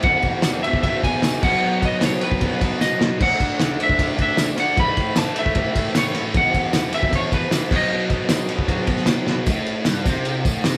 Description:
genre	garage rock duo or trio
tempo	153 BPM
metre	4/4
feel	straight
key	unclear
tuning	A4 = 440 Hz
part	electric slide guitar	melody	0.0-9.1 s	B4 to B5	-24 LUFS	equal	none
part	fuzz guitar	riff	0.0-10.8 s	E2 to D4	-26 LUFS	equal	distortion
part	cloth-damped thuddy drum kit	drums	0.0-10.7 s	crash cymbal, kick drum, ride cymbal, snare drum	-23 LUFS	equal	none
part	tambourine	percussion	0.4-10.7 s	none	-37 LUFS	equal	none
room	moderate small room reverb, RT60 0.5 s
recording	band playing live in one room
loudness	-20 LUFS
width	mono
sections	0.0-9.5 A section; 9.5-10.8 B section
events	drum fill 2.8-3.2, 9.3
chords	0.0 E; 1.4 B; 3.2 D; 4.8 A; 6.3 E5; 7.7 B; 9.5 Gsus24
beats	| 0.04 0.44 0.84 1.23 | 1.63 2.02 2.41 2.81 | 3.20 3.59 3.98 4.38 | 4.77 5.16 5.55 5.95 | 6.34 6.73 7.12 7.51 | 7.90 8.30 8.69 9.08 | 9.47 9.87 10.26 10.65

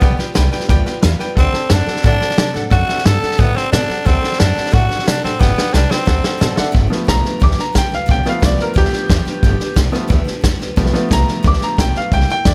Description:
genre	rockabilly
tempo	179 BPM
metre	4/4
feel	straight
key	G mixolydian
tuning	A4 = 440 Hz
part	raspy tenor saxophone	melody	0.0-6.6 s	B3 to A4	-22 LUFS	equal	slapback echo
part	bright upright piano	accompaniment	0.0-12.5 s	F3 to D6	-24 LUFS	equal	none
part	picked steel-string acoustic guitar	accompaniment	0.0-12.5 s	G2 to A4	-29 LUFS	equal	none
part	upright bass	bass	0.0-12.5 s	G1 to C3	-19 LUFS	equal	none
part	vintage drum kit	drums	0.0-12.5 s	hi-hat, kick drum, snare drum	-19 LUFS	equal	none
room	small room ambience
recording	none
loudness	-15 LUFS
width	mono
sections	0.0-6.7 A section; 6.7-12.5 B section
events	drum fill 5.4-6.7; upright piano fill 6.2-6.7; upright piano solo 6.7-12.5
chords	0.0 G7; 1.4 D7; 5.4 G7; 6.1 D7; 6.7 G7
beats	| 0.03 0.36 0.70 1.03 | 1.37 1.71 2.04 2.38 | 2.71 3.05 3.39 3.72 | 4.06 4.40 4.73 5.07 | 5.40 5.74 6.08 6.41 | 6.75 7.08 7.42 7.75 | 8.09 8.43 8.76 9.10 | 9.43 9.77 10.11 10.44 | 10.78 11.11 11.45 11.78 | 12.12 12.45

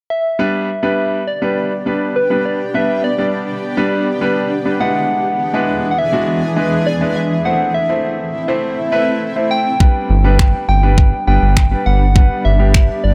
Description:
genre	dance-pop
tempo	102 BPM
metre	4/4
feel	straight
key	G major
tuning	A4 = 440 Hz
part	soft struck synth lead	melody	0.1-13.1 s	B4 to G5	-21 LUFS	equal	chorus, phaser, analog delay
part	clear concert grand piano	accompaniment	0.4-13.0 s	G3 to D5	-21 LUFS	equal	sidechain pumping
part	granular cloud pad	sustained chords	1.1-13.1 s	E3 to G#4	-24 LUFS	equal	built-in reverb, sidechain pumping
part	pop drum kit	drums	9.8-12.9 s	finger snaps, kick drum	-13 LUFS	equal	none
part	round analog bass	bass	10.1-13.1 s	G1	-15 LUFS	equal	sidechain pumping
room	digital ambience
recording	dry, gritty hardware recording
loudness	-15 LUFS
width	mono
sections	0.4-13.1 A section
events	none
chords	0.4 G; 4.8 E7; 7.5 Am; 9.8 G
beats	| 0.39 0.98 1.57 2.16 | 2.74 3.33 3.92 4.51 | 5.10 5.69 6.27 6.86 | 7.45 8.04 8.63 9.21 | 9.80 10.39 10.98 11.57 | 12.16 12.74

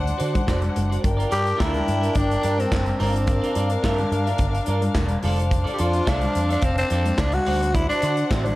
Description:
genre	disco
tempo	107 BPM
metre	4/4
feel	straight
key	G dorian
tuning	A4 = 440 Hz
part	warm chamber string section	second line	0.0-8.6 s	D4 to G5	-27 LUFS	left 2 dB	none
part	picked electric bass with an envelope filter	bass	0.0-8.5 s	E1 to D3	-24 LUFS	equal	none
part	clean electric guitar	accompaniment	0.1-8.5 s	F4 to E5	-31 LUFS	right 4 dB	spring reverb
part	modern studio drum kit	drums	0.1-8.6 s	handclaps, hi-hat, kick drum, snare drum	-26 LUFS	equal	none
part	congas	percussion	0.1-8.6 s	none	-32 LUFS	left 2 dB	none
part	growling tenor saxophone	melody	1.3-8.6 s	C4 to G4	-24 LUFS	equal	none
room	moderate large studio reverb, RT60 0.9 s, small room reverb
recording	none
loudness	-19 LUFS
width	side -18 dB against mid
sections	0.0-8.6 A section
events	none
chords	0.0 D7; 1.0 Gm7; 3.0 C9sus4/G; 5.2 F6; 7.5 D7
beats	0.48 | 1.04 1.60 2.16 2.72 | 3.28 3.83 4.39 4.95 | 5.51 6.07 6.63 7.18 | 7.74 8.30

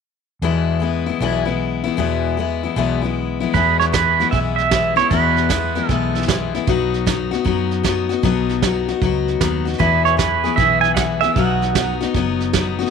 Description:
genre	honky-tonk and classic country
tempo	154 BPM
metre	4/4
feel	swing 66% on 8ths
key	E major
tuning	A4 = 439 Hz
part	picked steel-string acoustic guitar	accompaniment	0.4-12.9 s	E2 to G#4	-20 LUFS	left 10 dB	none
part	vintage muted fingered electric bass	bass	0.4-12.8 s	F#1 to F#2	-24 LUFS	right 1 dB	none
part	pedal steel guitar	second line	3.5-6.2, 9.8-12.0 s	B4 to G#5	-18 LUFS	right 10 dB	none
part	soft brush drum kit	drums	3.5-12.9 s	hi-hat, kick drum, snare drum	-22 LUFS	right 5 dB	none
room	moderate spring reverb, RT60 1.6 s, studio reverb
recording	1960s-style stereo with parts hard left and right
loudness	-16 LUFS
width	side -6 dB against mid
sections	0.4-3.5 A section; 3.5-12.9 B section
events	pedal steel guitar solo 3.5-12.9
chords	0.4 E; 6.7 B; 9.8 E; 11.4 B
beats	| 0.42 0.81 1.20 1.59 | 1.98 2.37 2.76 3.15 | 3.54 3.94 4.33 4.72 | 5.11 5.50 5.89 6.28 | 6.67 7.06 7.45 7.84 | 8.24 8.63 9.02 9.41 | 9.80 10.19 10.58 10.97 | 11.36 11.75 12.14 12.54

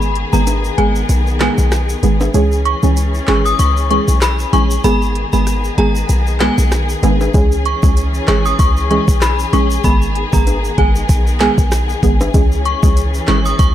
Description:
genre	dancehall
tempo	96 BPM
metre	4/4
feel	swing 56% on 16ths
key	G# minor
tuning	A4 = 438 Hz
part	deep mellow chord stab	accompaniment	0.0-13.5 s	D#3 to G#4	-18 LUFS	right 2 dB	chorus
part	dark studio string section	sustained chords	0.0-13.7 s	D#3 to G#4	-23 LUFS	left 3 dB	none
part	short 808-style bass	bass	0.0-13.7 s	G#1 to C#2	-16 LUFS	equal	none
part	egg shaker and timbales	percussion	0.0-13.7 s	none	-26 LUFS	left 1 dB	none
part	downlifter	sound effects	0.0-2.3 s	none	barely audible	none	none
part	island pop drum kit	drums	0.2-13.7 s	handclaps, hi-hat, kick drum, rim click, snare drum	-16 LUFS	equal	none
part	synth chime	melody	0.3-13.7 s	G#5 to D#6	-20 LUFS	left 2 dB	ensemble chorus, phaser, ping-pong delay
room	digital ambience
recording	dark, warm production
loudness	-12 LUFS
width	side -12 dB against mid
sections	0.0-13.7 A section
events	break 0.0-7.3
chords	0.0 G#m; 2.3 C#m; 4.8 G#m; 7.3 C#m; 9.8 G#m; 12.3 C#m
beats	0.47 1.09 1.72 | 2.34 2.97 3.59 4.22 | 4.84 5.47 6.09 6.72 | 7.34 7.97 8.59 9.22 | 9.84 10.47 11.09 11.72 | 12.34 12.97 13.59

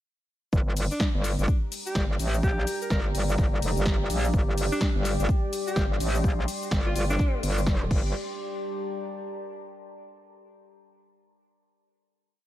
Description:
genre	bass house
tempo	126 BPM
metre	4/4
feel	swing 60% on 16ths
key	G minor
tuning	A4 = 441 Hz
part	metallic wobble bass	bass	0.5-8.1 s	F1 to Bb1	-26 LUFS	equal	chorus, sidechain pumping
part	electronic kick drum	drums	0.5-8.0 s	none	-25 LUFS	equal	overdrive
part	house drum kit	drums	0.5-8.0 s	crash cymbal, hi-hat, shaker, snare drum	-34 LUFS	left 1 dB	none
part	deep dark ambient pad	texture	1.7-10.0 s	G4 to C6	-34 LUFS	equal	chorus, built-in reverb, sidechain pumping
part	breathy alto saxophone	melody	0.9-7.4 s	D4 to Bb4	-34 LUFS	equal	ping-pong delay
room	light reverb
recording	none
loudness	-24 LUFS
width	side -14 dB against mid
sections	0.5-8.1 drop; 8.1-10.1 final chord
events	drop 0.5-8.1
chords	0.5 Gm; 7.9 G5; 8.1 Gm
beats	| 0.53 1.00 1.48 1.96 | 2.43 2.91 3.38 3.86 | 4.34 4.81 5.29 5.77 | 6.24 6.72 7.20 7.67 | 8.15 8.62 9.10 9.58

